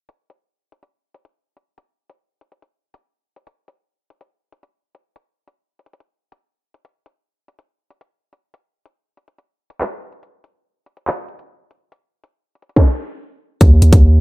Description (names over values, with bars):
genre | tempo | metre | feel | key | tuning
hip hop, drill | 142 BPM | 4/4 | half-time | unclear | A4 = 440 Hz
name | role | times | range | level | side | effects
drill drum kit | drums | 0.1-14.0 s | handclaps, hi-hat, kick drum, snare drum | -12 LUFS | equal | none
long sustained 808-style bass | bass | 13.6-14.2 s | Eb2 | -9 LUFS | equal | none
room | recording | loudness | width
little or no reverb | low-pass filter | -12 LUFS | side -22 dB against mid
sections
0.1-13.6 A section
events
break 0.1-6.8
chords
none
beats
| 0.09 0.51 0.93 1.36 | 1.78 2.20 2.62 3.05 | 3.47 3.89 4.31 4.74 | 5.16 5.58 6.00 6.43 | 6.85 7.27 7.69 8.12 | 8.54 8.96 9.38 9.81 | 10.23 10.65 11.07 11.50 | 11.92 12.34 12.76 13.19 | 13.61 14.03